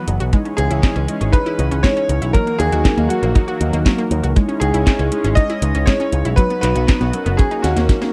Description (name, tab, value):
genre	italo disco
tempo	119 BPM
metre	4/4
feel	straight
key	unclear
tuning	A4 = 438 Hz
part	bright concert grand piano	melody	0.0-8.1 s	F#4 to D#5	-24 LUFS	equal	tape echo
part	warm analog pad	sustained chords	0.0-8.1 s	E3 to F#4	-29 LUFS	equal	chorus, tremolo
part	analog pluck	arpeggios	0.0-8.1 s	F#3 to F#4	-28 LUFS	equal	chorus, tape echo
part	picked electric bass with an envelope filter	bass	0.1-7.9 s	F#1 to D#2	-21 LUFS	equal	none
part	house drum kit	drums	0.1-8.1 s	handclaps, hi-hat, snare drum	-26 LUFS	equal	none
part	mellow synth brass	stabs	0.3-8.1 s	A#3 to C#5	-27 LUFS	equal	chorus
part	kick drum	drums	0.3-8.0 s	none	-16 LUFS	equal	none
room	little or no reverb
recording	dry, close 1970s-style studio recording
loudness	-17 LUFS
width	mono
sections	0.0-8.1 A section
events	drum fill 7.6-8.1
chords	0.3 C#madd9; 2.3 D#m; 4.4 C#madd9; 6.4 B; 7.4 D#m7